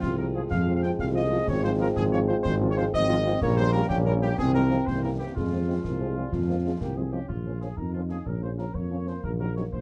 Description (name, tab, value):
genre	military-style march for wind band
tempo	124 BPM (dotted quarters)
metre	6/8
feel	straight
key	F minor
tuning	A4 = 440 Hz
part	mellow trumpet section	melody	0.0-9.8 s	F4 to G5	-35 LUFS	equal	none
part	warm euphonium	second line	0.0-9.8 s	F3 to Eb4	-34 LUFS	equal	none
part	dark trombone section	sustained chords	0.0-7.1 s	E3 to C4	-36 LUFS	equal	none
part	mellow tuba	bass	0.0-9.8 s	Ab1 to F2	-30 LUFS	equal	none
part	concert snare drum, concert bass drum and clash cymbals	drums	0.0-9.8 s	none	-37 LUFS	equal	none
part	mellow French horn section	accompaniment	0.2-9.6 s	E3 to F4	-36 LUFS	equal	none
room	light reverb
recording	dark, warm production, nothing above 10.8 kHz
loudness	-26 LUFS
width	mono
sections	0.0-7.3 A section; 7.3-9.8 B section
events	none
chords	0.0 Fm; 1.5 Fm/Ab; 3.4 Gdim/Bb; 4.4 Fm/C; 4.9 C7; 5.4 Fm; 7.3 Bbm; 9.2 Cm7b5/Bb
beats	0.02 | 0.51 0.99 | 1.48 1.96 | 2.45 2.93 | 3.42 3.90 | 4.39 4.88 | 5.36 5.84 | 6.33 6.82 | 7.30 7.79 | 8.27 8.76 | 9.24 9.73